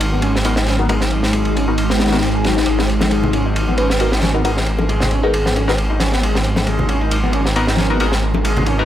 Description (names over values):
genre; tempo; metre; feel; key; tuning
breakbeat, breaks; 135 BPM; 4/4; swing 54% on 16ths; G# minor; A4 = 444 Hz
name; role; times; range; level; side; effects
deep dark ambient pad; sustained chords; 0.0-8.8 s; G#3 to D#5; -22 LUFS; equal; chorus, built-in reverb
detuned saw bass; bass; 0.0-8.8 s; G#1; -19 LUFS; equal; tube saturation
crunchy breakbeat drum kit; drums; 0.0-8.8 s; ride cymbal, snare drum; -21 LUFS; equal; high-pass filter on cymbals, high-pass filter on snare, high-pass filter on room
electronic hi-hat; drums; 0.0-8.8 s; none; barely audible; none; none
raw garage guitar; riff; 0.1-8.8 s; F#3 to G#4; -24 LUFS; left 1 dB; overdrive, vintage 12-bit sampler grit, low-pass filter, tape echo
band-passed chord stab; stabs; 0.4-8.8 s; B3 to A#4; -22 LUFS; left 2 dB; phaser, cassette tape, tape echo
congas and bongos; percussion; 3.0-8.7 s; none; -23 LUFS; left 2 dB; none
bell-like FM electric piano; melody; 3.8-5.6 s; G#4 to B4; -23 LUFS; right 2 dB; chorus, old record sound, tape echo
room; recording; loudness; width
small room ambience; none; -14 LUFS; side -11 dB against mid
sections
0.0-8.8 A section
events
filter sweep on synth stab 0.0-8.8; filter sweep on ambient pad 0.0-8.8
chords
0.0 G#m7